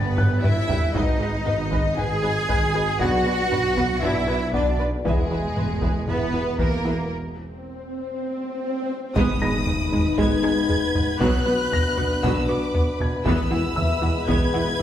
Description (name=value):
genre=cinematic, hybrid orchestral and electronic film score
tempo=117 BPM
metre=4/4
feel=straight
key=G# minor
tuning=A4 = 441 Hz
part: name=warm symphonic violin section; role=second line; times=0.0-14.8 s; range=G#4 to B5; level=-29 LUFS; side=left 2 dB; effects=none
part: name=warm French horn section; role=sustained chords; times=0.0-14.8 s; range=G#3 to G4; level=-29 LUFS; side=left 4 dB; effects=none
part: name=woody wave-folded pluck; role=arpeggios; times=0.0-14.7 s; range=E3 to B4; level=-32 LUFS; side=left 2 dB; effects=none
part: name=plucky analog bass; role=riff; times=0.0-14.8 s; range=E2 to B3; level=-30 LUFS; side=right 2 dB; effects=none
part: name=clear symphonic cello section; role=bass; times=0.0-14.6 s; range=E2 to G#4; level=-27 LUFS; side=right 2 dB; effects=none
part: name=rich symphonic double bass section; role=bass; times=0.0-14.6 s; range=E1 to B1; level=-29 LUFS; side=right 2 dB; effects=none
part: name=dark baby grand piano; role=texture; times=0.0-14.8 s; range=E5 to A#6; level=-34 LUFS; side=left 2 dB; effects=none
part: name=rich symphonic violin section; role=melody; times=0.2-14.8 s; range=D5 to G#6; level=-32 LUFS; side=left 1 dB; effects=none
part: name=rich symphonic viola section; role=accompaniment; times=0.2-14.6 s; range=F#3 to B4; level=-30 LUFS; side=right 1 dB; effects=none
part: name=taiko ensemble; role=drums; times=0.2-14.8 s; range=none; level=-26 LUFS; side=equal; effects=none
part: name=swell and impact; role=sound effects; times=7.6-11.2 s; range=none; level=-30 LUFS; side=equal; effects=none
room=wet recital hall reverb, RT60 1.7 s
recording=recorded in a church or concert hall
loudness=-20 LUFS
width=side -10 dB against mid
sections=0.0-9.2 A section; 9.2-14.8 B section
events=drum fill 0.2-1.0, 8.4-9.2; break 7.1-9.2; swell 7.6-9.2; impact 9.2-11.2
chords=0.0 G; 1.0 G#m; 3.0 Bm; 5.1 E; 7.1 N.C.; 9.2 G#m; 11.2 Bm; 13.3 E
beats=0.44 | 0.95 1.47 1.98 2.49 | 3.00 3.52 4.03 4.54 | 5.05 5.57 6.08 6.59 | 7.11 7.62 8.13 8.64 | 9.16 9.67 10.18 10.70 | 11.21 11.72 12.23 12.75 | 13.26 13.77 14.29 14.80